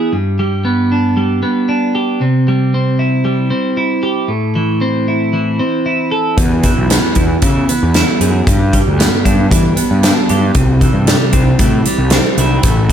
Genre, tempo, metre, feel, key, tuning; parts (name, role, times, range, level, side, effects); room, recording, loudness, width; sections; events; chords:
quiet-loud alternative rock; 115 BPM; 4/4; straight; A4 = 437 Hz
twelve-string electric guitar; arpeggios; 0.0-12.9 s; E2 to A4; -14 LUFS; right 1 dB
fuzz picked electric bass; bass; 6.4-12.9 s; A1 to E3; -15 LUFS; equal; overdrive
huge arena drum kit; drums; 6.4-12.9 s; hi-hat, kick drum, snare drum; -14 LUFS; equal
light reverb, small room ambience; -11 LUFS; side -9 dB against mid
0.0-12.9 A section
0.1 G; 2.2 C; 4.3 Am; 6.4 E; 8.5 G; 10.6 C